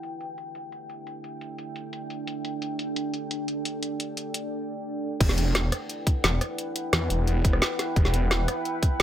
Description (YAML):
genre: dark technical drum and bass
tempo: 174 BPM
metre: 4/4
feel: straight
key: E minor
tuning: A4 = 441 Hz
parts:
  - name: deep dark ambient pad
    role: sustained chords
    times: 0.0-9.0 s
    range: D4 to G5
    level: -32 LUFS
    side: right 1 dB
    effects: chorus, built-in reverb, sidechain pumping
  - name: drum and bass drum kit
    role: drums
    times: 0.0-9.0 s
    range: crash cymbal, hi-hat, rim click, snare drum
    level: -27 LUFS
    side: equal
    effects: none
  - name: snarling distorted saw bass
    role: bass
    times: 5.2-9.0 s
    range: E1 to E2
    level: -24 LUFS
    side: equal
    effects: distortion, overdrive, sidechain pumping
  - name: electronic kick drum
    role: drums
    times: 5.2-8.9 s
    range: none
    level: -22 LUFS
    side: equal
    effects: none
room: light reverb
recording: low-pass filter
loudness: -25 LUFS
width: side -11 dB against mid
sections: 0.0-5.2 A section; 5.2-9.0 B section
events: filter sweep on ambient pad 0.0-5.2; filter sweep 0.0-5.2; drop 5.2-9.0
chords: 0.0 Dsus4; 5.2 Em